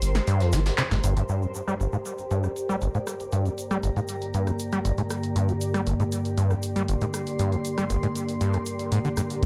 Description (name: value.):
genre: acid house.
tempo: 118 BPM.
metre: 4/4.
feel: straight.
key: G minor.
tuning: A4 = 440 Hz.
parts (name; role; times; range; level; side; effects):
round analog bass; bass; 0.0-1.2 s; G1; -27 LUFS; equal; sidechain pumping.
punchy analog drum machine; drums; 0.0-9.5 s; handclaps, hi-hat, rim click, snare drum; -36 LUFS; equal; low-pass filter on hats, low-pass filter on snare, low-pass filter on room.
soft brush drum kit; drums; 0.0-1.2, 9.4-9.5 s; hi-hat, snare drum; -39 LUFS; equal; high-pass filter on hats, high-pass filter on snare, high-pass filter on room.
egg shaker; percussion; 0.0-9.5 s; none; -45 LUFS; equal; none.
granular cloud pad; texture; 0.0-9.5 s; G4 to C6; -36 LUFS; equal; built-in reverb, sidechain pumping.
overdriven acid bass; riff; 0.3-9.5 s; G1 to G3; -28 LUFS; equal; distortion, analog chorus, sidechain pumping, digital delay.
warm analog pad; sustained chords; 1.3-9.5 s; G2 to Bb4; -33 LUFS; equal; chorus, sidechain pumping.
electronic kick drum; drums; 9.4-9.5 s; none; -27 LUFS; equal; none.
room: moderate studio reverb, RT60 0.6 s.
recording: dark, warm production.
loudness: -26 LUFS.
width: mono.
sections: 0.0-1.3 A section; 1.3-9.4 B section.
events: drop 0.0-1.3; kick drops out 0.3-1.3; band accent 0.8; filter sweep on drum 1.3-9.4; filter sweep on analog synth pad 1.3-9.4.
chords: 0.0 Gm.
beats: 0.27 0.78 | 1.29 1.80 2.31 2.82 | 3.32 3.83 4.34 4.85 | 5.36 5.87 6.38 6.88 | 7.39 7.90 8.41 8.92 | 9.43.